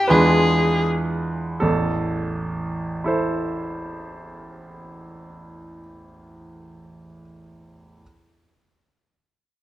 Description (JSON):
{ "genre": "classical, romantic duo for violin and grand piano", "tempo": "42 BPM", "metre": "3/4", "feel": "rubato", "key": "A minor", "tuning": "A4 = 440 Hz", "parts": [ { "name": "rich violin", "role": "melody", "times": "0.0-0.9 s", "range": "G4 to G#4", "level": "-20 LUFS", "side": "left 2 dB", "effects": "none" }, { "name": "bright grand piano", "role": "accompaniment", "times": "0.0-8.0 s", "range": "A1 to C5", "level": "-22 LUFS", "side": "right 2 dB", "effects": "none" } ], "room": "moderate recital hall reverb, RT60 1.5 s", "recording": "close, detailed microphones", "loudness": "-19 LUFS", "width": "side -14 dB against mid", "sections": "0.0-1.6 A section; 1.6-5.9 B section", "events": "slowing down 0.0-1.6", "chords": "0.1 E7b9; 1.6 Am" }